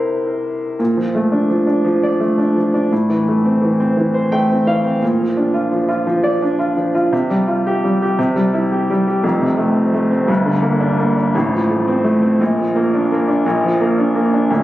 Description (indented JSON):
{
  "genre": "folk",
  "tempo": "57 BPM (dotted quarters)",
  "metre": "6/8",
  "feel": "straight",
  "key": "unclear",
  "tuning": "A4 = 435 Hz",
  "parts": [
    { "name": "warm grand piano", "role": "solo", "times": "0.0-14.6 s", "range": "D1 to G5", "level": "-14 LUFS", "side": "equal", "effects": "analog delay" }
  ],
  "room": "moderate large studio reverb, RT60 0.9 s",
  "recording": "recorded on a phone in the room, club reverb",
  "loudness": "-14 LUFS",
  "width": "side -15 dB against mid",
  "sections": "0.8-9.2 A section; 9.2-14.6 B section",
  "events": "none",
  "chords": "0.0 C7; 0.8 Bbmaj7; 2.9 Am7; 5.0 Bb; 7.1 Csus4; 8.2 C; 9.2 F; 10.3 Gm; 11.3 F/A; 12.4 Bb"
}